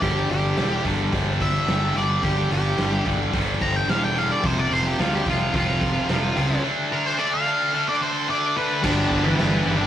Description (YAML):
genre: quiet-loud alternative rock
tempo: 109 BPM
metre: 4/4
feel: straight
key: unclear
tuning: A4 = 438 Hz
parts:
  - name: octave-fuzz lead guitar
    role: melody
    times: 0.0-9.9 s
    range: E3 to Bb5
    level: -24 LUFS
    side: equal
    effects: distortion
  - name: distorted electric guitar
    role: riff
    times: 0.0-9.9 s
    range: F2 to G4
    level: -27 LUFS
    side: left 6 dB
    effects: overdrive
  - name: scooped high-gain guitar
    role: riff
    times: 0.0-9.9 s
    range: F2 to G4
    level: -27 LUFS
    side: right 6 dB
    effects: distortion
  - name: fuzz picked electric bass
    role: bass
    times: 0.0-9.9 s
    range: E1 to D2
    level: -25 LUFS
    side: equal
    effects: overdrive
  - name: raw garage drum kit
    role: drums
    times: 0.0-9.8 s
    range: crash cymbal, hi-hat, kick drum, snare drum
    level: -27 LUFS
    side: right 1 dB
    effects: none
  - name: sludgy distorted guitar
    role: riff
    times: 8.8-9.9 s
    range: G2 to G3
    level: -28 LUFS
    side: equal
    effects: none
room: moderate stone room reverb, RT60 1.1 s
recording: rough rehearsal-room recording, tube saturation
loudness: -20 LUFS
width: side -10 dB against mid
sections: 0.0-8.8 A section; 8.8-9.9 B section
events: lead electric guitar solo 0.0-8.8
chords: 0.0 G5; 4.4 F5; 6.6 D5; 8.8 G6